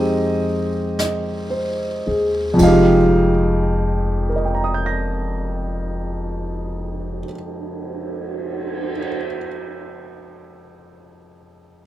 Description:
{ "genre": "jazz ballad", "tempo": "36 BPM", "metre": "4/4", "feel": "swing 69% on 8ths", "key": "F minor", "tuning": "A4 = 440 Hz", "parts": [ { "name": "warm grand piano", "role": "accompaniment", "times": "0.0-11.8 s", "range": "F2 to Bb6", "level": "-19 LUFS", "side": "equal", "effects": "none" }, { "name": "upright bass", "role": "bass", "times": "0.0-7.2 s", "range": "F1 to F2", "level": "-24 LUFS", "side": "left 1 dB", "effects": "none" }, { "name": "jazz brush drum kit", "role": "drums", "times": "1.0-9.0 s", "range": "brushed snare drum, crash cymbal, cymbal swell, hi-hat, kick drum, snare drum", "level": "-30 LUFS", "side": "right 2 dB", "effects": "none" } ], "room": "moderate large studio reverb, RT60 1.5 s", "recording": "none", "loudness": "-18 LUFS", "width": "side -13 dB against mid", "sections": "0.0-2.6 A section; 2.6-9.3 B section", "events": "slowing down 0.0-2.6", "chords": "0.0 Fm7" }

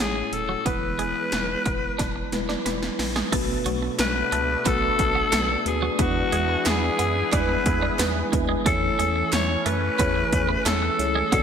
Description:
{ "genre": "1980s-style pop", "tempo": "90 BPM", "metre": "4/4", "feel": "straight", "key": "B dorian", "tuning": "A4 = 440 Hz", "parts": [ { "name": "raspy alto saxophone", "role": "melody", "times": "0.0-11.4 s", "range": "F#4 to C#5", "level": "-25 LUFS", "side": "left 2 dB", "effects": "none" }, { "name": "mellow tine electric piano", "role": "accompaniment", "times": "0.0-11.4 s", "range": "B2 to G#5", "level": "-28 LUFS", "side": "left 1 dB", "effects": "medium stereo tremolo" }, { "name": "twelve-string electric guitar", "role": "riff", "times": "0.0-11.4 s", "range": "F#3 to D4", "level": "-32 LUFS", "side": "right 7 dB", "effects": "lush chorus" }, { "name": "rubbery square bass", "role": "bass", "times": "0.0-11.4 s", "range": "D#1 to F#2", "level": "-30 LUFS", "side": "equal", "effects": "none" }, { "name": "80s electronic pad drums", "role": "drums", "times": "0.3-11.4 s", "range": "crash cymbal, hi-hat, kick drum, snare drum, tambourine", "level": "-27 LUFS", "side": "equal", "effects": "overdrive, gated reverb" }, { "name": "sweeping resonant pad", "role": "sustained chords", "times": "3.3-11.4 s", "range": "D3 to G#4", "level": "-32 LUFS", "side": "right 2 dB", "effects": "chorus" }, { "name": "group handclap", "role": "percussion", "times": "4.0-10.8 s", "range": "none", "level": "-39 LUFS", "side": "right 9 dB", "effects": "none" } ], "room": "moderate lush hall reverb, RT60 2.0 s, digital ambience", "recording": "bright 1980s-style digital production", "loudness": "-21 LUFS", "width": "side -7 dB against mid", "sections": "0.0-3.3 A section; 3.3-11.4 B section", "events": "drum fill 2.0-3.3", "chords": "0.0 A; 0.7 E; 3.3 Bm7; 6.0 E7; 8.7 Amaj7/E" }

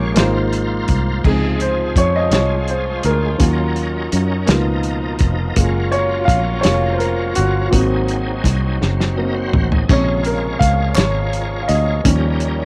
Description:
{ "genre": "slow gospel", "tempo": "56 BPM (dotted quarters)", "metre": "6/8", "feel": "straight", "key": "Db major", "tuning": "A4 = 441 Hz", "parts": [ { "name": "clear saxophone section", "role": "melody", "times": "0.0-0.5 s", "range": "Db4 to Bb4", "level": "-34 LUFS", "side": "equal", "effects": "none" }, { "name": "clear tenor saxophone", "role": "melody", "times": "0.0-0.5 s", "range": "Bb3", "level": "-37 LUFS", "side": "equal", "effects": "none" }, { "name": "warm baby grand piano", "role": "accompaniment", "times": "0.0-12.7 s", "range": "Ab2 to F5", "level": "-22 LUFS", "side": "equal", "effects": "cassette tape" }, { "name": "bright tonewheel organ", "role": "sustained chords", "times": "0.0-12.7 s", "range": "Cb3 to Eb5", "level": "-29 LUFS", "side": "equal", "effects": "slow rotary speaker, chorus vibrato, cassette tape" }, { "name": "fingered electric bass", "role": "bass", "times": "0.0-12.7 s", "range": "F1 to Gb2", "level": "-21 LUFS", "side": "equal", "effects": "none" }, { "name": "warm soul drum kit", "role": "drums", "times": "0.2-12.6 s", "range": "crash cymbal, hi-hat, kick drum, snare drum, splash cymbal, toms", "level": "-20 LUFS", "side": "equal", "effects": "none" }, { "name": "muted French horn section", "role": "sustained chords", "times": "1.2-12.7 s", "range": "Cb3 to Db5", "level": "-31 LUFS", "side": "equal", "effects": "cassette tape" }, { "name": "group handclap", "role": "percussion", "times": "11.0-11.3 s", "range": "none", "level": "-29 LUFS", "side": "equal", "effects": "none" } ], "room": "light reverb", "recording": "home recording on cassette", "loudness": "-17 LUFS", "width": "mono", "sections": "0.0-1.2 A section; 1.2-12.7 B section", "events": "grand piano solo 1.2-12.7; drum fill 8.8-9.9", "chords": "0.2 Ab69; 1.2 Dbmaj7; 3.4 Ebm7; 4.5 Db13; 5.6 Gbmaj7; 7.7 Ab7; 9.9 Bbm7; 12.1 Eb7" }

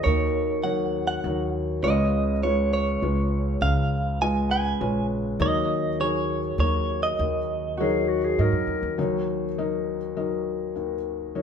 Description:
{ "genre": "acoustic folk-pop ballad", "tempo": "101 BPM", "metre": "3/4", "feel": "straight", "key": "Eb minor", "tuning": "A4 = 441 Hz", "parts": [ { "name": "direct-recorded clean electric guitar", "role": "melody", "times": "0.0-8.3 s", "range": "Db5 to Ab5", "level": "-28 LUFS", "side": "right 3 dB", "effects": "tremolo" }, { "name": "felt-muted upright piano", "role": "accompaniment", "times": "0.0-11.4 s", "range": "Db2 to Eb5", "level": "-25 LUFS", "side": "left 2 dB", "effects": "none" }, { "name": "Celtic harp", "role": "arpeggios", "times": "0.0-10.2 s", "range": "Gb4 to Eb5", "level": "-33 LUFS", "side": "right 5 dB", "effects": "none" }, { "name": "upright bass", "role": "bass", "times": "0.1-9.0 s", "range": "Bb1 to Ab2", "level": "-28 LUFS", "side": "right 1 dB", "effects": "none" }, { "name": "warm clarinet", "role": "second line", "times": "7.8-9.0 s", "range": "Gb4 to Bb4", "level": "-29 LUFS", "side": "left 3 dB", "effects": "none" } ], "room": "moderate large studio reverb, RT60 0.9 s", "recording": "band playing live in one room", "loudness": "-22 LUFS", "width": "side -7 dB against mid", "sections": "0.0-9.0 A section; 9.0-11.4 B section", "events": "none", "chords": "0.0 Ebm7; 1.8 Db7; 5.4 Ebm7" }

